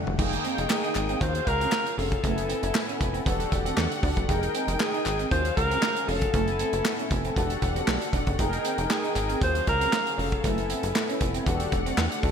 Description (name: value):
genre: early-eighties boogie funk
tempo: 117 BPM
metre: 4/4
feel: straight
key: unclear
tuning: A4 = 440 Hz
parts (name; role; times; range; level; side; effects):
- mellow synth brass; accompaniment; 0.0-12.3 s; A3 to Ab5; -31 LUFS; left 2 dB; chorus
- electric guitar through a small old amp; riff; 0.0-12.3 s; Ab3 to Eb4; -35 LUFS; right 7 dB; lush chorus
- plucky analog bass; bass; 0.1-12.3 s; E1 to E2; -29 LUFS; equal; none
- modern studio drum kit; drums; 0.1-12.3 s; crash cymbal, handclaps, hi-hat, kick drum, snare drum, toms; -29 LUFS; right 1 dB; none
- dark studio string section; sustained chords; 0.2-12.3 s; A2 to G5; -36 LUFS; left 3 dB; none
- mellow alto saxophone; melody; 0.7-11.7 s; Ab4 to C5; -29 LUFS; left 1 dB; none
- group handclap; percussion; 0.7-12.1 s; none; -37 LUFS; left 5 dB; none
room: moderate lush hall reverb, RT60 1.9 s, studio reverb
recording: bright 1980s-style digital production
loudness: -23 LUFS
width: side -7 dB against mid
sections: 0.2-12.3 A section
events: drum fill 0.0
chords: 0.2 Fm11; 1.2 Ebm11; 2.2 Gbm11; 3.3 Em11; 4.3 Fm11; 5.3 Ebm11; 6.3 Gbm11; 7.4 Em11; 8.4 Fm11; 9.4 Ebm11; 10.4 Gbm11; 11.5 Em11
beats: | 0.19 0.70 1.21 1.72 | 2.24 2.75 3.26 3.78 | 4.29 4.80 5.31 5.83 | 6.34 6.85 7.37 7.88 | 8.39 8.90 9.42 9.93 | 10.44 10.96 11.47 11.98